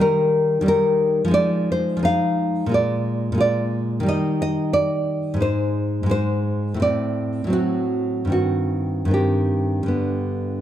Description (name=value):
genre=romantic piece for solo classical guitar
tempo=72-93 BPM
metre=4/4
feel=rubato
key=unclear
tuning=A4 = 439 Hz
part: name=nylon-string guitar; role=solo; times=0.0-10.6 s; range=G2 to F5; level=-18 LUFS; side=equal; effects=none
room=moderate recital hall reverb, RT60 1.6 s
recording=dark, warm production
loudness=-19 LUFS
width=side -11 dB against mid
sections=0.0-10.6 A section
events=none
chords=0.0 Eb; 1.4 Fm7; 2.8 Bb7; 4.1 Eb; 5.5 Ab; 6.8 D7/A; 8.3 Cm/G; 9.9 G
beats=| 0.04 0.70 1.36 2.07 | 2.76 3.42 4.09 4.77 | 5.45 6.14 6.84 7.55 | 8.34 9.15 9.93